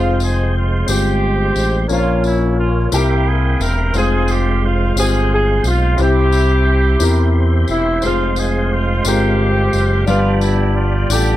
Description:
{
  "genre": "slow gospel",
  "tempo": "59 BPM (dotted quarters)",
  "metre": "6/8",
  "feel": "straight",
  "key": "F harmonic minor",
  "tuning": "A4 = 440 Hz",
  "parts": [
    { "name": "warm horn section", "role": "melody", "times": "0.0-11.4 s", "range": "Ab3 to Bb4", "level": "-19 LUFS", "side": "equal", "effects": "none" },
    { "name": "clear upright piano", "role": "accompaniment", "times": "0.0-11.4 s", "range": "G2 to G5", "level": "-20 LUFS", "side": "left 4 dB", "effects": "none" },
    { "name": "tonewheel organ", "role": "sustained chords", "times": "0.0-11.4 s", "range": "G3 to C6", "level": "-24 LUFS", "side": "right 3 dB", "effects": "fast rotary speaker, overdrive, chorus vibrato" },
    { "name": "smooth gliding synth bass", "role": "bass", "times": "0.0-11.4 s", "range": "E1 to E2", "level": "-16 LUFS", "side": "equal", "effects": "none" },
    { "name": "tambourine", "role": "percussion", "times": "0.2-11.4 s", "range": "none", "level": "-27 LUFS", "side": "left 12 dB", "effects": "none" }
  ],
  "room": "little or no reverb",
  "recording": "dry, close 1970s-style studio recording",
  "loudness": "-13 LUFS",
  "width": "side -14 dB against mid",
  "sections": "0.0-11.4 A section",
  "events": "none",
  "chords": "0.0 Fm; 1.9 Bbm; 2.9 C7; 3.9 Fm; 6.0 C; 8.0 Fm; 10.1 G7"
}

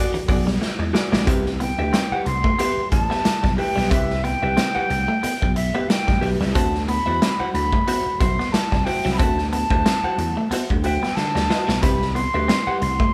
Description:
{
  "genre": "funk",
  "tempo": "91 BPM",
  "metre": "4/4",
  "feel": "swing 56% on 16ths",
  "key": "unclear",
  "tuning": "A4 = 440 Hz",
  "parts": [
    { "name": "vintage hollow-body jazz guitar", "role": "accompaniment", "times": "0.0-13.0 s", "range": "F#4 to F#5", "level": "-30 LUFS", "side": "equal", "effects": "none" },
    { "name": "clean electric guitar", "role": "riff", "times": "0.1-13.1 s", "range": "E3 to C4", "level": "-31 LUFS", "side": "equal", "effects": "none" },
    { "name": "raw garage drum kit", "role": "drums", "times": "0.1-13.1 s", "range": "hi-hat, kick drum, snare drum", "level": "-25 LUFS", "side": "equal", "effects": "none" },
    { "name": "vintage slap bass", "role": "bass", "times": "0.3-13.0 s", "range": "A1 to D3", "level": "-28 LUFS", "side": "equal", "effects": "none" },
    { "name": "concert flute", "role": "melody", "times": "1.6-13.1 s", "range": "E5 to C6", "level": "-26 LUFS", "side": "equal", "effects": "none" }
  ],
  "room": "moderate large studio reverb, RT60 1.2 s",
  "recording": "band playing live in one room",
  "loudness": "-21 LUFS",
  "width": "mono",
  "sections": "0.0-1.3 A section; 1.3-13.1 B section",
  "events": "drum fill 0.6-1.3, 11.2-11.8",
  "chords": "0.0 E9; 1.3 Cmaj7; 6.6 D9; 11.8 Cmaj7"
}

